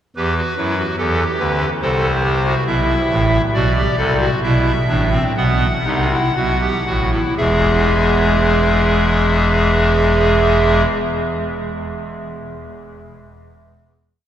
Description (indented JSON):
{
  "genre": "classical, baroque-style 3-part fugue for pipe organ",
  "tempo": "56-73 BPM",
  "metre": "4/4",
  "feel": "straight",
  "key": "unclear",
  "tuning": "A4 = 442 Hz",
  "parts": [
    { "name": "pipe organ, clarinet reed", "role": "solo", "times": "0.2-10.9 s", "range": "E1 to F#5", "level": "-15 LUFS", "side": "equal", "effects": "none" }
  ],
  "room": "wet cathedral reverb, RT60 6.6 s",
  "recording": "heard from further back in the room",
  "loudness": "-14 LUFS",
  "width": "side -10 dB against mid",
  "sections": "0.2-7.4 exposition; 7.4-11.6 final chord",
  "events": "slowing down 0.2-9.5",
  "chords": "0.2 Em; 1.8 Am/C; 3.5 B7sus4; 5.4 B7(no3); 7.4 E"
}